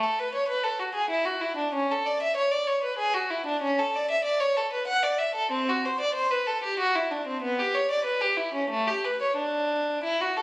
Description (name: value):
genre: classical, baroque-style suite movement for unaccompanied violin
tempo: 94 BPM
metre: 3/4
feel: uneven beats, rubato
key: A major, D major from 3.6 s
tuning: A4 = 441 Hz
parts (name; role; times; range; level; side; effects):
- warm violin; solo; 0.0-10.4 s; A3 to F#5; -24 LUFS; equal; none
room: moderate recital hall reverb, RT60 1.4 s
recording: recorded on a phone in the room, club reverb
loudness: -24 LUFS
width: side -21 dB against mid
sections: 0.0-10.4 A section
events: none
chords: none